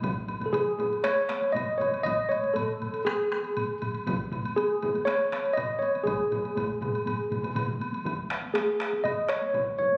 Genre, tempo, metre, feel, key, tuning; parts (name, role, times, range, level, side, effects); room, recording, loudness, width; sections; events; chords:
japanese traditional, taiko drum ensemble; 120 BPM; 4/4; straight; A4 = 440 Hz
taiko ensemble; percussion; 0.0-10.0 s; -41 LUFS; equal
taiko ensemble; percussion; 0.0-9.9 s; -38 LUFS; equal
taiko ensemble; percussion; 0.0-9.7 s; -39 LUFS; equal
woodblock; percussion; 0.0-9.7 s; -40 LUFS; equal
tine electric piano; melody; 0.5-10.0 s; G#4 to D#5; -29 LUFS; equal
taiko ensemble; percussion; 2.1-7.8 s; -40 LUFS; equal
wet recital hall reverb, RT60 1.4 s; recorded on a phone in the room, club reverb; -28 LUFS; mono
0.0-8.1 A section; 8.1-10.0 B section